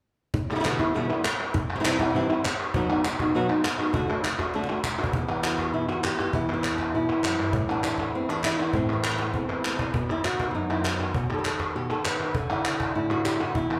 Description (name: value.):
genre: flamenco.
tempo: 200 BPM.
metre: 4/4.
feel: straight.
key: E minor.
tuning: A4 = 435 Hz.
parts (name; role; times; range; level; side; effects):
flamenco guitar; melody; 0.3-13.8 s; E2 to B4; -29 LUFS; equal; none.
cajon; percussion; 0.3-13.8 s; none; -35 LUFS; equal; none.
palmas hand claps; percussion; 0.5-13.8 s; none; -31 LUFS; equal; none.
room: wet large studio reverb, RT60 1.2 s.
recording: band playing live in one room.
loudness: -26 LUFS.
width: mono.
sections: 0.3-5.1 A section; 5.1-13.8 B section.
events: drum fill 4.5-5.1, 9.0-9.9.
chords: 0.3 Em7; 1.5 C; 2.7 B; 3.9 D; 5.1 Em; 7.5 Am; 9.9 B; 12.3 D.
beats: | 0.35 0.65 0.95 1.25 | 1.55 1.85 2.15 2.44 | 2.74 3.04 3.34 3.64 | 3.94 4.24 4.54 4.84 | 5.14 5.44 5.74 6.04 | 6.34 6.64 6.94 7.24 | 7.54 7.84 8.14 8.44 | 8.74 9.04 9.34 9.64 | 9.94 10.24 10.54 10.85 | 11.14 11.45 11.75 12.05 | 12.35 12.65 12.95 13.25 | 13.55.